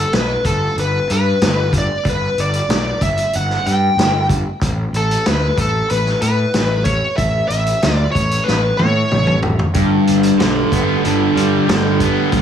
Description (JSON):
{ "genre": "classic rock", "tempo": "93 BPM", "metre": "4/4", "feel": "straight", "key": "unclear", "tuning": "A4 = 439 Hz", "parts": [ { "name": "smooth overdriven lead guitar", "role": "melody", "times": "0.0-9.4 s", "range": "A4 to G5", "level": "-19 LUFS", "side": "left 1 dB", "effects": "digital delay" }, { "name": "fuzz fingered electric bass", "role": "bass", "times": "0.0-12.4 s", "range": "G1 to A2", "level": "-19 LUFS", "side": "equal", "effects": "overdrive" }, { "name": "vintage drum kit", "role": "drums", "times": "0.1-12.4 s", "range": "hi-hat, kick drum, snare drum, toms", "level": "-20 LUFS", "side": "equal", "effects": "none" }, { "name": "cranked stack guitar", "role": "riff", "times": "9.8-12.4 s", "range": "G2 to B3", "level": "-14 LUFS", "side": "equal", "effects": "overdrive" } ], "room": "moderate large studio reverb, RT60 0.9 s, small room ambience", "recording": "none", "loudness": "-14 LUFS", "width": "side -8 dB against mid", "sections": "0.0-12.4 A section", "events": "drum fill 8.5-9.8", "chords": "0.0 G; 4.6 A; 9.8 G" }